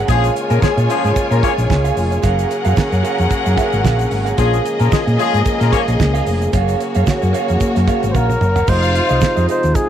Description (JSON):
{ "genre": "disco", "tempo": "112 BPM", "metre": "4/4", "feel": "swing 56% on 16ths", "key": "Bb minor", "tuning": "A4 = 440 Hz", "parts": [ { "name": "clear symphonic string section", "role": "second line", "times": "0.0-9.4 s", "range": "Bb3 to Ab5", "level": "-22 LUFS", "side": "left 2 dB", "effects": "none" }, { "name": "electric guitar through a small old amp", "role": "accompaniment", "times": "0.0-9.8 s", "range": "Gb4 to Ab5", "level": "-24 LUFS", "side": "right 14 dB", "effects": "vibrato effect" }, { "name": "warm French horn section", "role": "sustained chords", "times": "0.0-9.9 s", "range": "C3 to Ab4", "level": "-22 LUFS", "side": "equal", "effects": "none" }, { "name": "warm horn section", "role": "stabs", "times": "0.1-5.8 s", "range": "F3 to Db5", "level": "-21 LUFS", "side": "left 13 dB", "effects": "none" }, { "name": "hollow-body short-scale fingered electric bass", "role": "bass", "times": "0.1-9.7 s", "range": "F1 to Bb2", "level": "-16 LUFS", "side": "equal", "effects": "none" }, { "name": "damped 70s drum kit", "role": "drums", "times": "0.1-9.9 s", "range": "crash cymbal, hi-hat, kick drum, snare drum, toms", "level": "-19 LUFS", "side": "right 2 dB", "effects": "none" }, { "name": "egg shaker", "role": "percussion", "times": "0.1-9.9 s", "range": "none", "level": "-40 LUFS", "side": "left 18 dB", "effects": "none" }, { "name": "breathy flugelhorn", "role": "melody", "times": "8.1-9.9 s", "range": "Ab4 to C5", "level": "-18 LUFS", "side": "equal", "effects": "none" } ], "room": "light reverb, small room ambience", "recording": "1960s-style stereo with parts hard left and right", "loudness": "-13 LUFS", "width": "side -10 dB against mid", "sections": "0.0-8.7 A section; 8.7-9.9 B section", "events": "drum fill 8.1-8.7", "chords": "0.1 Bbm7; 2.2 Gbmaj7; 4.4 Bbm7; 6.5 Gbmaj7; 8.7 Fm7", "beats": "| 0.08 0.62 1.16 1.70 | 2.24 2.77 3.31 3.85 | 4.39 4.92 5.46 6.00 | 6.54 7.07 7.61 8.14 | 8.68 9.22 9.75" }